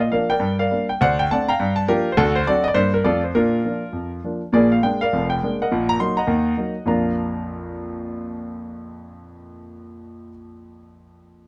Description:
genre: jazz, stride piano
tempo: 205 BPM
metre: 4/4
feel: swing 62% on 8ths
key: Bb major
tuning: A4 = 439 Hz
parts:
  - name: clear concert grand piano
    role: solo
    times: 0.0-11.4 s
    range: F1 to C6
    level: -22 LUFS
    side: equal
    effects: none
room: moderate booth ambience, RT60 0.2 s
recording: none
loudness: -21 LUFS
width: mono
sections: 0.0-4.5 A section; 4.5-6.9 B section; 6.9-9.2 C section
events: none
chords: 0.4 Gm7; 1.0 D7; 1.6 Gm7; 2.2 D7; 2.8 Gm; 3.1 F; 3.4 Bb; 4.5 Bb7; 5.7 Ebm/Bb; 6.9 Bb

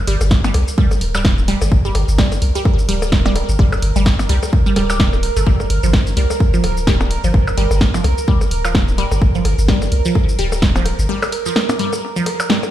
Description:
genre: minimal techno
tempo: 128 BPM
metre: 4/4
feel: swing 57% on 16ths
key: G minor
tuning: A4 = 440 Hz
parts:
  - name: pulsing gated texture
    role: texture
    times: 0.0-12.7 s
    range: Bb4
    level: -26 LUFS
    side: right 5 dB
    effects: chorus, built-in reverb, sidechain pumping
  - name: resonant blip pluck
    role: riff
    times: 0.1-12.5 s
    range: F3 to G4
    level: -22 LUFS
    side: equal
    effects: phaser, sidechain pumping, ping-pong delay
  - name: punchy sub bass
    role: bass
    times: 0.1-11.1 s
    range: D1 to C2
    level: -18 LUFS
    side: equal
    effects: sidechain pumping
  - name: punchy analog drum machine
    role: drums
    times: 0.1-12.7 s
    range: hi-hat, shaker, snare drum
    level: -22 LUFS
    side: right 1 dB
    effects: none
  - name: percussion blips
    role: percussion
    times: 0.2-12.7 s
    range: none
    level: -24 LUFS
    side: left 3 dB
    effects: digital delay
  - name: electronic kick drum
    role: drums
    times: 0.3-10.7 s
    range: none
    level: -15 LUFS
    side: equal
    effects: none
room: light reverb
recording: played on a big sound system in a bare room, stone room reverb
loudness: -13 LUFS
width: side -12 dB against mid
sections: 0.0-12.7 A section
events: break 11.1-12.7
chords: 0.0 Gm

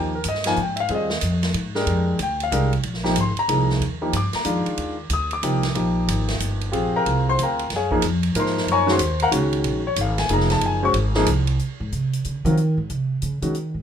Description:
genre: modal jazz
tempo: 185 BPM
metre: 3/4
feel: swing 64% on 8ths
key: Bb mixolydian, Eb major from 3.8 s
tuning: A4 = 444 Hz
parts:
  - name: warm concert grand piano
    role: accompaniment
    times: 0.0-13.5 s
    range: Eb3 to Eb6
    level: -22 LUFS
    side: left 2 dB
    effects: none
  - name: upright bass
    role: bass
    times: 0.0-13.8 s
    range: F1 to Eb3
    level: -23 LUFS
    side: right 1 dB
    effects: none
  - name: swinging big-band drum kit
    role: drums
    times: 0.2-13.6 s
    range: hi-hat, kick drum, ride cymbal, snare drum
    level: -29 LUFS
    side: right 3 dB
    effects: none
room: light reverb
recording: minimal, uncompressed stereo recording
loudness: -19 LUFS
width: side -8 dB against mid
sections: 0.0-3.8 A section; 3.8-11.6 A section; 11.6-13.8 A section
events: upright bass solo 11.6-13.8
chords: 0.0 Bb9sus4; 3.8 Ebmaj9; 7.7 Gbmaj9; 11.6 Dbmaj7sus2

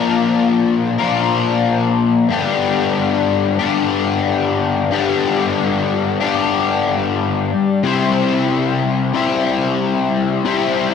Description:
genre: rock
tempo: 92 BPM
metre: 4/4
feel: straight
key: unclear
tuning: A4 = 440 Hz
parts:
  - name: crunchy overdriven guitar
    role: solo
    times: 0.0-10.9 s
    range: G2 to C5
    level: -15 LUFS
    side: left 5 dB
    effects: flanger
room: wet echo chamber reverb, RT60 1.9 s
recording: none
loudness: -15 LUFS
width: side -6 dB against mid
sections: 0.0-10.9 A section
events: none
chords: 0.0 Bb; 2.3 G; 7.8 C

